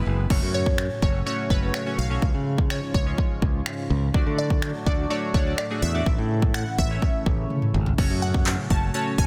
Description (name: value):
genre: dance-pop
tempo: 125 BPM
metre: 4/4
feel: straight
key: F# minor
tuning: A4 = 440 Hz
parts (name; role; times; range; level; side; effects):
- chorused retro synth keys; accompaniment; 0.0-9.3 s; G#3 to D5; -34 LUFS; equal; sidechain pumping
- modern bright fingered electric bass; bass; 0.0-9.3 s; F#1 to D3; -28 LUFS; equal; sidechain pumping
- warm analog pad; sustained chords; 0.3-9.3 s; G#2 to F#4; -35 LUFS; equal; chorus, sidechain pumping
- pop drum kit; drums; 0.3-9.3 s; crash cymbal, finger snaps, handclaps, kick drum, toms; -26 LUFS; equal; overdrive, soft clipping on snare
- glassy wavetable pluck; melody; 0.5-9.3 s; B4 to A5; -33 LUFS; equal; chorus, digital delay
room: little or no reverb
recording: dense, heavily limited modern master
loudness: -24 LUFS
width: mono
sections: 0.3-9.3 A section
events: drum fill 7.5-8.0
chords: 0.3 F#m; 2.2 C#; 4.1 D; 6.1 A; 8.0 F#m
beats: | 0.30 0.78 1.26 1.74 | 2.22 2.70 3.18 3.66 | 4.14 4.62 5.10 5.58 | 6.06 6.54 7.02 7.50 | 7.98 8.46 8.94